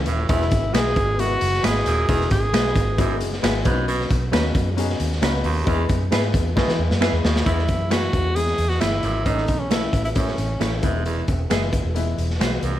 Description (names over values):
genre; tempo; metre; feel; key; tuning
uptempo 1960s-style soul; 134 BPM; 4/4; straight; E major; A4 = 440 Hz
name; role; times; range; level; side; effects
warm baby grand piano; accompaniment; 0.0-12.7 s; E3 to B4; -27 LUFS; left 5 dB; none
vintage muted fingered electric bass; bass; 0.0-12.8 s; D#1 to E3; -24 LUFS; equal; none
clear baritone saxophone; riff; 0.1-12.8 s; D#2 to B2; -29 LUFS; right 5 dB; none
raw garage drum kit; drums; 0.1-12.7 s; hi-hat, kick drum, snare drum; -23 LUFS; equal; none
breathy tenor saxophone; melody; 0.3-3.2, 7.5-10.8 s; C#4 to G#4; -24 LUFS; equal; none
semi-hollow electric guitar; stabs; 0.7-12.5 s; F#3 to B4; -29 LUFS; right 8 dB; none
finger snaps; percussion; 0.7-12.5 s; none; -33 LUFS; left 3 dB; none
room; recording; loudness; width
light reverb; vinyl crackle; -18 LUFS; side -12 dB against mid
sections
0.0-7.5 A section; 7.5-12.8 B section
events
drum fill 6.6-7.5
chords
0.3 Eadd9; 3.7 Badd9; 5.7 E; 9.3 A; 10.8 E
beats
| 0.29 0.74 1.19 1.64 | 2.09 2.54 2.98 3.43 | 3.88 4.33 4.77 5.22 | 5.67 6.12 6.57 7.01 | 7.46 7.91 8.36 8.81 | 9.26 9.71 10.16 10.61 | 11.06 11.51 11.96 12.41